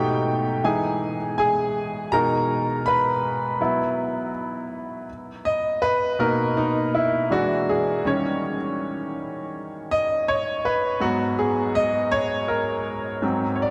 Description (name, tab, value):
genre	R&B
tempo	81 BPM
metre	4/4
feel	swing 61% on 16ths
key	B major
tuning	A4 = 439 Hz
part	clear baby grand piano	solo	0.0-13.7 s	G#2 to B5	-24 LUFS	equal	none
room	wet cathedral reverb, RT60 5.9 s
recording	recorded in a church or concert hall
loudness	-23 LUFS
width	mono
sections	0.0-5.1 A section; 5.1-13.7 B section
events	grand piano solo 0.0-5.1, 5.1-13.7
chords	0.0 Baug7; 0.6 Emaj7; 2.1 B6; 3.6 F#7sus4; 5.1 Bmaj7; 7.3 E9; 8.0 D#7; 11.0 G#m7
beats	0.63 1.37 | 2.11 2.85 3.60 4.34 | 5.08 5.82 6.56 7.30 | 8.04 8.78 9.52 10.26 | 11.00 11.74 12.48 13.22